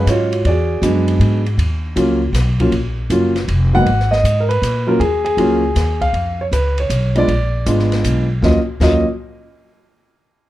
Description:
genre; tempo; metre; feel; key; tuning
jazz piano trio; 158 BPM; 3/4; swing 67% on 8ths; Eb minor; A4 = 440 Hz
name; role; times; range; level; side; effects
warm concert grand piano; melody; 0.0-9.1 s; Ab2 to Gb5; -16 LUFS; equal; none
upright bass; bass; 0.0-9.0 s; F1 to Bb2; -17 LUFS; equal; none
open jazz drum kit; drums; 0.1-8.9 s; crash cymbal, hi-hat, kick drum, ride cymbal, snare drum; -26 LUFS; left 1 dB; none
room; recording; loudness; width
light reverb; dark, warm production; -14 LUFS; side -15 dB against mid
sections
0.0-3.9 A section; 3.9-8.4 B section; 8.4-9.6 C section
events
none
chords
0.5 E9; 1.6 Ebm9; 3.9 Abm9; 5.0 Ebm7; 6.1 F(b5, no3); 7.3 Bb7b9; 8.4 Ebm7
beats
0.07 | 0.45 0.83 1.21 | 1.59 1.97 2.35 | 2.73 3.11 3.48 | 3.87 4.24 4.62 | 5.00 5.38 5.76 | 6.14 6.52 6.90 | 7.28 7.66 8.04 | 8.42 8.80

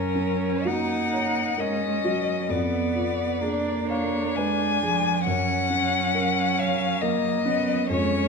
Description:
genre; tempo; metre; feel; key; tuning
classical, slow romantic movement for piano quartet; 57-69 BPM; 3/4; rubato; F# major; A4 = 440 Hz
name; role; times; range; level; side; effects
warm violin; melody; 0.0-8.3 s; A#4 to Ab5; -25 LUFS; left 7 dB; none
warm cello; second line; 0.0-8.3 s; F3 to Cb4; -29 LUFS; right 6 dB; none
dark grand piano; accompaniment; 0.0-8.3 s; F2 to F5; -30 LUFS; equal; none
rich viola; accompaniment; 0.0-8.3 s; A#3 to D#4; -29 LUFS; right 4 dB; none
room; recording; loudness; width
wet recital hall reverb, RT60 1.7 s; none; -22 LUFS; side -4 dB against mid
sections
0.0-8.3 A section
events
none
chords
0.0 F#; 2.5 Fdim7; 5.3 F#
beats
0.67 1.60 | 2.51 3.42 4.38 | 5.27 6.15 7.02 | 7.90

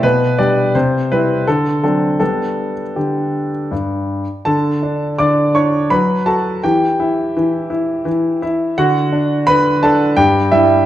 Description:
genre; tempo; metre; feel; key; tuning
classical-period piano sonatina; 82 BPM; 3/4; uneven beats, rubato; G major, D major from 4.5 s; A4 = 440 Hz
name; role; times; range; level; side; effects
clear grand piano; solo; 0.0-10.9 s; G2 to D6; -13 LUFS; equal; none
room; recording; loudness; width
moderate recital hall reverb, RT60 1.4 s; dark, warm production; -13 LUFS; side -12 dB against mid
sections
0.0-4.5 A section; 4.5-10.9 B section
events
none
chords
0.0 G/B; 0.7 C; 1.5 D7; 2.2 G; 4.5 D5; 5.9 F#madd11; 6.6 Em; 8.8 D; 10.2 Em/G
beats
| 0.03 0.75 1.47 | 2.20 2.96 3.72 | 4.46 5.19 5.92 | 6.64 7.36 8.07 | 8.78 9.47 10.17

